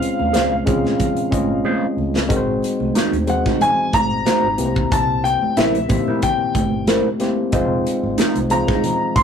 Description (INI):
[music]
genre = lush 1970s-style soul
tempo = 92 BPM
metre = 4/4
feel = swing 54% on 16ths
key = unclear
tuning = A4 = 436 Hz
[part]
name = warm concert grand piano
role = melody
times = 0.0-9.2 s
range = E5 to C6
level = -20 LUFS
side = left 2 dB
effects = none
[part]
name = tine electric piano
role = accompaniment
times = 0.0-9.2 s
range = Ab3 to Eb5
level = -21 LUFS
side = left 1 dB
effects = none
[part]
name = modern studio drum kit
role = drums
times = 0.0-9.2 s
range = hi-hat, kick drum, snare drum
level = -22 LUFS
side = equal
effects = none
[part]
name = congas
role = percussion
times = 0.0-9.2 s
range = none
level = -26 LUFS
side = right 3 dB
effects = none
[part]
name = vintage muted fingered electric bass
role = bass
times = 0.2-9.2 s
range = F1 to Eb2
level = -27 LUFS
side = equal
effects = none
[part]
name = mellow electric guitar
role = riff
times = 0.3-8.8 s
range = Eb4 to F5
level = -21 LUFS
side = right 3 dB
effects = phaser
[sound]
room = moderate small room reverb, RT60 0.5 s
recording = rough rehearsal-room recording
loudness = -16 LUFS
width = side -7 dB against mid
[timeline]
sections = 0.0-2.3 A section; 2.3-9.2 B section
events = drum fill 1.7-2.3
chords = 0.0 Dbmaj7; 2.3 Ab7; 4.6 C7; 7.5 Fm7